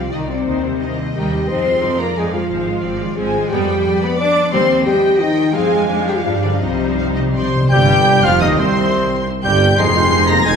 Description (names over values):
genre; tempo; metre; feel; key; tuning
classical, dramatic, fast romantic movement for symphony orchestra; 175 BPM; 3/4; rubato; C minor; A4 = 440 Hz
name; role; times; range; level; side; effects
warm symphonic violin section; melody; 0.0-10.6 s; C5 to C7; -24 LUFS; left 2 dB; none
clear symphonic viola section; accompaniment; 0.0-10.6 s; Eb3 to G4; -25 LUFS; right 1 dB; none
dark French horn section; sustained chords; 0.0-10.5 s; C3 to D5; -20 LUFS; left 2 dB; none
concert harp; arpeggios; 0.0-10.6 s; G2 to Eb5; -25 LUFS; left 6 dB; none
clear symphonic double bass section; bass; 0.0-10.6 s; F1 to G2; -24 LUFS; right 3 dB; none
rich symphonic cello section; bass; 0.0-10.6 s; C2 to D4; -23 LUFS; right 3 dB; none
rich symphonic violin section; second line; 0.1-10.6 s; C5 to D6; -24 LUFS; equal; none
timpani; percussion; 6.6-7.7 s; C3; -20 LUFS; left 1 dB; none
mellow concert flute; second line; 7.4-10.5 s; C5 to C6; -23 LUFS; equal; none
warm clarinet; second line; 7.7-10.5 s; C4 to G4; -26 LUFS; equal; none
warm oboe; second line; 7.7-10.5 s; C5 to G5; -23 LUFS; equal; none
mellow bassoon; accompaniment; 7.7-10.5 s; C3 to Ab3; -23 LUFS; right 3 dB; none
bright trombone section; sustained chords; 7.7-10.6 s; C3 to C4; -24 LUFS; right 3 dB; none
clear trumpet section; stabs; 7.7-10.6 s; Ab4 to G5; -20 LUFS; equal; none
mellow tuba; bass; 7.7-10.6 s; F1 to Eb2; -22 LUFS; right 2 dB; none
room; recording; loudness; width
wet scoring stage reverb, RT60 1.7 s; minimal, uncompressed stereo recording; -13 LUFS; side -6 dB against mid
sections
0.0-7.7 A section; 7.7-10.6 A section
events
timpani fill 6.6-7.7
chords
0.5 Cm/Eb; 1.5 Fm7; 2.5 Fm/Ab; 3.5 G7/F; 4.5 Cm/Eb; 5.5 Fm; 5.9 Ddim/F; 6.3 G5; 6.6 Cm; 7.7 Cm/G; 8.8 Cm; 9.8 Fm7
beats
0.12 | 0.46 0.81 1.15 | 1.49 1.83 2.17 | 2.50 2.83 3.17 | 3.50 3.85 4.19 | 4.53 4.86 5.21 | 5.55 5.90 6.25 | 6.62 6.99 7.35 | 7.71 8.06 8.41 | 8.76 9.10 9.44 | 9.79 10.12 10.46